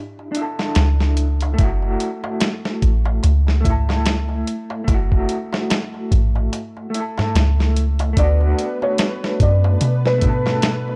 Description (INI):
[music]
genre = trip hop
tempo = 73 BPM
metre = 4/4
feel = swing 58% on 16ths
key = unclear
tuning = A4 = 444 Hz
[part]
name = electric guitar at the edge of break-up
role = accompaniment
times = 0.0-11.0 s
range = A3 to A4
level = -28 LUFS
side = equal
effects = tremolo, tape echo
[part]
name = darbuka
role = percussion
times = 0.2-11.0 s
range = none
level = -31 LUFS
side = equal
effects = none
[part]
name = dusty soul sampler-style drum kit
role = drums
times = 0.3-10.9 s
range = hi-hat, kick drum, snare drum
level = -23 LUFS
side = equal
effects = studio reverb
[part]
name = soft 808-style bass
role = bass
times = 0.8-11.0 s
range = F#1 to B2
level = -19 LUFS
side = equal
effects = none
[part]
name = felt-muted upright piano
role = melody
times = 8.2-10.6 s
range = B4 to D5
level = -25 LUFS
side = equal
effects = vintage 12-bit sampler grit
[part]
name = string machine, cellos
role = sustained chords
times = 8.2-11.0 s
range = B4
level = -31 LUFS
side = equal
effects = ensemble chorus
[sound]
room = little or no reverb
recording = dry, gritty hardware recording, cassette tape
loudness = -19 LUFS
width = mono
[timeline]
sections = 0.0-11.0 A section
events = none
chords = 0.0 Em7; 1.6 F#m7; 8.2 D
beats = 0.78 | 1.60 2.42 3.24 4.06 | 4.88 5.71 6.53 7.35 | 8.17 8.99 9.82 10.64